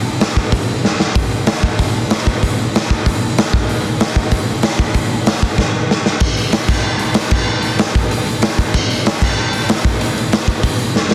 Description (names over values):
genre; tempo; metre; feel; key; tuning
punk; 190 BPM; 4/4; straight; none; none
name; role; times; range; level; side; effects
raw garage drum kit; drums; 0.2-11.1 s; crash cymbal, hi-hat, kick drum, snare drum; -16 LUFS; equal; none
room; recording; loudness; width
little or no reverb; dense, heavily limited modern master; -16 LUFS; mono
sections
0.0-6.2 A section; 6.2-11.1 B section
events
drum fill 0.8-1.2, 5.6-6.2, 10.9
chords
none